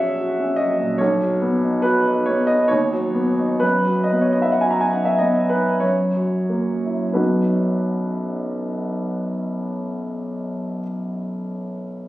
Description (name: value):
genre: classical, romantic nocturne for solo piano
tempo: 42-76 BPM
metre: 3/4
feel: rubato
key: B major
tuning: A4 = 440 Hz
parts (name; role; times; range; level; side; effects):
- warm grand piano; solo; 0.0-12.1 s; A#1 to A#5; -18 LUFS; equal; none
room: wet recital hall reverb, RT60 1.5 s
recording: recorded on a phone in the room, studio reverb, compression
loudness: -18 LUFS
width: side -15 dB against mid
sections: 0.0-7.2 A section; 7.2-11.0 B section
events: slowing down 0.0-7.2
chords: 0.0 F#7/A#; 1.0 B; 2.7 B/D#; 3.6 B/F#; 5.8 F#7; 7.2 B